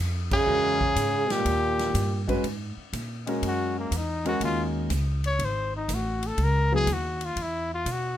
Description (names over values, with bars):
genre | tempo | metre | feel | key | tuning
jazz, small-group swing and bop | 122 BPM | 4/4 | swing 69% on 8ths | G# minor | A4 = 441 Hz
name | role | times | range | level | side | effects
upright bass | bass | 0.0-8.2 s | G#1 to B2 | -28 LUFS | equal | none
mellow trumpet | melody | 0.3-8.2 s | A#3 to C#5 | -27 LUFS | left 2 dB | none
warm trombone | second line | 0.3-2.3 s | A#2 to C#3 | -29 LUFS | right 5 dB | none
swinging big-band drum kit | drums | 0.3-8.0 s | crash cymbal, hi-hat, kick drum, ride cymbal, snare drum | -34 LUFS | equal | none
warm concert grand piano | accompaniment | 0.5-6.9 s | F#3 to B4 | -29 LUFS | left 1 dB | none
room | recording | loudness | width
light reverb | none | -24 LUFS | side -11 dB against mid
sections
0.0-2.4 A section; 2.4-8.2 B section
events
band accent 0.2; trumpet solo 2.4-8.2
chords
0.5 A#m7b5; 1.5 D#7; 2.4 G#sus2; 4.4 D#m7; 5.4 G#7b9; 6.4 C#m11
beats
| 0.47 0.96 1.46 1.95 | 2.44 2.93 3.43 3.92 | 4.41 4.91 5.40 5.89 | 6.38 6.88 7.37 7.86